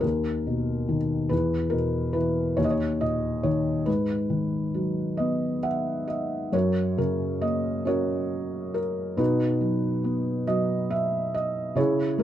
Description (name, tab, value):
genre	classical, lyrical solo piano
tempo	46 BPM (dotted quarters)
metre	6/8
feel	rubato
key	unclear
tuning	A4 = 441 Hz
part	felt-muted upright piano	solo	0.0-12.2 s	D#2 to F#5	-24 LUFS	equal	none
room	moderate studio reverb, RT60 0.5 s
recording	dark, warm production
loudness	-24 LUFS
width	side -11 dB against mid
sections	0.0-6.5 A section; 6.5-12.2 B section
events	felt piano fill 5.2-6.5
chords	0.0 B/D#; 1.3 E5; 2.6 D#5; 3.9 G#m7; 6.5 F#; 9.2 B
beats	0.04 | 1.32 2.59 | 3.88 5.20 | 6.54 7.87 | 9.19 10.49 | 11.76